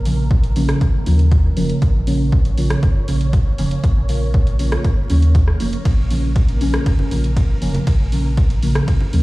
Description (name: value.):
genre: dub techno.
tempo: 119 BPM.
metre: 4/4.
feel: straight.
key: Bb minor.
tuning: A4 = 440 Hz.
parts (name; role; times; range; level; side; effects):
soft dub sub bass; bass; 0.0-9.2 s; F1 to Eb2; -18 LUFS; equal; tube saturation, sidechain pumping.
flickering grainy texture; texture; 0.0-9.2 s; Bb3 to Db5; -33 LUFS; right 1 dB; built-in reverb, sidechain pumping.
deep mellow chord stab; stabs; 0.1-9.2 s; Db3 to Db4; -22 LUFS; equal; chorus, phaser, cassette tape, sidechain pumping, dub echo.
punchy analog drum machine; drums; 0.1-9.2 s; hi-hat, ride cymbal, rim click; -30 LUFS; right 1 dB; dub echo.
electronic kick drum; drums; 0.3-9.0 s; none; -15 LUFS; equal; none.
congas; percussion; 6.6-9.1 s; none; -29 LUFS; right 3 dB; sidechain pumping on perc, dub echo.
room: little or no reverb.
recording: played on a big sound system in a bare room, stone room reverb, vinyl crackle.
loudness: -14 LUFS.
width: side -20 dB against mid.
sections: 0.0-9.2 A section.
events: none.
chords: 0.0 Bbm.